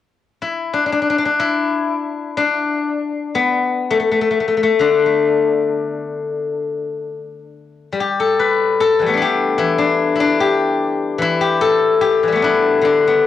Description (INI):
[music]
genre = chinese traditional, Chinese solo plucked strings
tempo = free time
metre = none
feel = none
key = D zhi mode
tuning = A4 = 442 Hz
[part]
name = steel-string zither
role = solo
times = 0.4-13.3 s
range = D3 to B4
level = -15 LUFS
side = left 4 dB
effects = cassette tape
[sound]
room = moderate spring reverb, RT60 1.3 s, small room ambience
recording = home recording on cassette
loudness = -15 LUFS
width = side -11 dB against mid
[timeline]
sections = 0.0-8.0 A section; 8.0-13.3 B section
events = none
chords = none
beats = free time